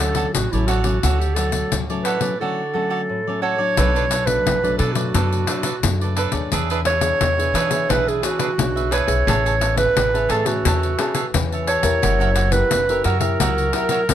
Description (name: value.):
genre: samba and choro.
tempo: 87 BPM.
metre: 4/4.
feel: straight.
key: D major, B minor from 3.8 s.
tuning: A4 = 440 Hz.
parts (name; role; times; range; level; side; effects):
warm clarinet; melody; 0.0-14.1 s; E4 to C#5; -21 LUFS; right 2 dB; none.
cavaquinho; accompaniment; 0.0-14.0 s; D4 to A5; -26 LUFS; right 6 dB; none.
nylon-string guitar; accompaniment; 0.0-14.1 s; F#2 to C#5; -27 LUFS; left 5 dB; none.
upright bass; bass; 0.0-14.1 s; F#1 to E3; -22 LUFS; equal; none.
pandeiro; percussion; 0.1-14.1 s; none; -24 LUFS; left 6 dB; none.
room: light reverb.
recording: close, detailed microphones.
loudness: -17 LUFS.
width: side -10 dB against mid.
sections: 0.0-3.8 A section; 3.8-14.1 B section.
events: none.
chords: 0.0 Dmaj7; 3.8 Bm7; 6.5 E13; 9.3 Amaj9; 12.0 F#7b9.